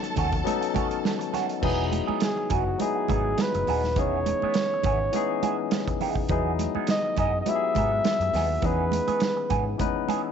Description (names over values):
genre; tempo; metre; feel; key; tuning
lush 1970s-style soul; 103 BPM; 4/4; swing 54% on 16ths; E major; A4 = 440 Hz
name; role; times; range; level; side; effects
rich studio violin section; second line; 0.0-1.6 s; A4 to A5; -34 LUFS; left 1 dB; none
barky tine electric piano; accompaniment; 0.0-10.3 s; E3 to B4; -29 LUFS; left 13 dB; overdrive
electric guitar through a small old amp; riff; 0.0-10.3 s; D#3 to G#4; -32 LUFS; right 12 dB; wah
vintage drum kit; drums; 0.0-10.2 s; crash cymbal, hi-hat, kick drum, snare drum; -29 LUFS; right 2 dB; none
vintage muted fingered electric bass; bass; 0.2-9.7 s; D#1 to G#2; -29 LUFS; equal; none
congas; percussion; 0.2-10.2 s; none; -35 LUFS; right 11 dB; none
dark flugelhorn; melody; 2.2-9.8 s; F#4 to E5; -27 LUFS; equal; none
room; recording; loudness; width
light reverb; 1960s-style stereo with parts hard left and right, nothing above 7.9 kHz; -23 LUFS; side -7 dB against mid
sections
0.0-1.6 A section; 1.6-10.3 B section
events
none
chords
0.0 B9; 1.6 Emaj7; 4.0 C#m7/E; 6.3 Emaj7; 8.6 C#m7/E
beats
0.46 1.04 | 1.63 2.21 2.79 3.38 | 3.96 4.54 5.13 5.71 | 6.29 6.88 7.46 8.04 | 8.63 9.21 9.80